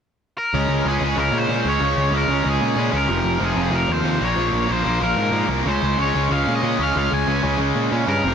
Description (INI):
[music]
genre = punk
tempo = 187 BPM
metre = 4/4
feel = straight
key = unclear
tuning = A4 = 440 Hz
[part]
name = biting overdriven guitar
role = melody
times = 0.4-8.3 s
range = Ab4 to Ab5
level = -23 LUFS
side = left 1 dB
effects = ping-pong delay
[part]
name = distorted electric guitar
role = riff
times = 0.5-8.3 s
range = F2 to Db4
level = -21 LUFS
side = equal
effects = overdrive, slapback echo
[part]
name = fuzz picked electric bass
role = bass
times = 0.5-8.3 s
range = F1 to Bb2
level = -23 LUFS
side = equal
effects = overdrive
[sound]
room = moderate scoring stage reverb, RT60 2.0 s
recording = big arena sound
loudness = -18 LUFS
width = side -7 dB against mid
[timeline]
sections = 0.5-8.3 A section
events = none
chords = 0.0 N.C.; 0.5 Db5; 3.1 Fm; 4.2 Bbm; 5.7 Db5